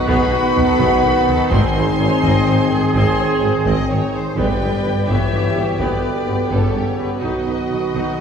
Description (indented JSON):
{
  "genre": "cinematic, epic orchestral film score",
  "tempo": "84 BPM (dotted quarters)",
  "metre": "12/8",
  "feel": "straight",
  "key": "unclear",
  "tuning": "A4 = 445 Hz",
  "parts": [
    { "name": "rich symphonic violin section", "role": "melody", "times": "0.0-8.2 s", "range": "B4 to B#5", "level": "-26 LUFS", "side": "left 3 dB", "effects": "none" },
    { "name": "rich studio violin section", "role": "second line", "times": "0.0-8.2 s", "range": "F#4 to D#5", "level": "-28 LUFS", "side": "left 2 dB", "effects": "none" },
    { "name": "rich symphonic viola section", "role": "accompaniment", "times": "0.0-8.2 s", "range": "B3 to G4", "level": "-26 LUFS", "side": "right 1 dB", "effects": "none" },
    { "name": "bright trombone section", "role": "sustained chords", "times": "0.0-8.2 s", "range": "B2 to B#3", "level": "-25 LUFS", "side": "right 2 dB", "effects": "none" },
    { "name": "mellow trumpet", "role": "stabs", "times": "0.0-8.2 s", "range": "F#4 to G#4", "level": "-25 LUFS", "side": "right 4 dB", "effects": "none" },
    { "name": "bright flute section", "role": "second line", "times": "0.1-8.2 s", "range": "F#4 to G#5", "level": "-26 LUFS", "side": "equal", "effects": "none" },
    { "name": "warm French horn section", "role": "sustained chords", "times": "0.1-8.2 s", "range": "B2 to B#3", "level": "-22 LUFS", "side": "left 3 dB", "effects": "none" },
    { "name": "clear symphonic cello section", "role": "bass", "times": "0.1-8.2 s", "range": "G2 to B2", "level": "-23 LUFS", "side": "equal", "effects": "none" },
    { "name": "clear tuba", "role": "bass", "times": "0.1-8.2 s", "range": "G1 to B1", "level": "-25 LUFS", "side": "right 1 dB", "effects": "none" },
    { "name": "rich symphonic double bass section", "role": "bass", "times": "0.1-8.0 s", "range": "G1 to B1", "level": "-26 LUFS", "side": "right 1 dB", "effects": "none" },
    { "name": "taiko ensemble", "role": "drums", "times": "0.1-6.9 s", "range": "none", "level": "-26 LUFS", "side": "left 1 dB", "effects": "none" }
  ],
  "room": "wet scoring stage reverb, RT60 1.7 s",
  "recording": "heard from further back in the room, studio ambience",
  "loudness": "-15 LUFS",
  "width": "side -7 dB against mid",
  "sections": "0.0-8.2 A section",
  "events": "none",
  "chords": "0.0 B; 1.5 G#; 4.4 G; 7.2 B"
}